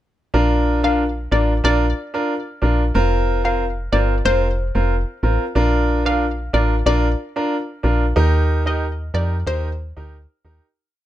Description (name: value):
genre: dancehall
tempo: 92 BPM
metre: 4/4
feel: straight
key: Bb major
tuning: A4 = 440 Hz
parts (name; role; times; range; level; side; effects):
- bright grand piano; accompaniment; 0.3-10.7 s; C4 to Bb4; -21 LUFS; right 1 dB; none
- woody FM bass; bass; 0.3-10.6 s; F1 to F2; -19 LUFS; equal; none
- analog pluck; melody; 0.8-9.9 s; C5 to F5; -23 LUFS; left 2 dB; chorus, ping-pong delay
room: light reverb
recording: dark, warm production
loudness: -17 LUFS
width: side -13 dB against mid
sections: 0.3-10.8 chorus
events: fade-out 8.2-10.8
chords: 0.3 Bb; 3.0 Fsus4; 5.6 Bb; 8.2 Eb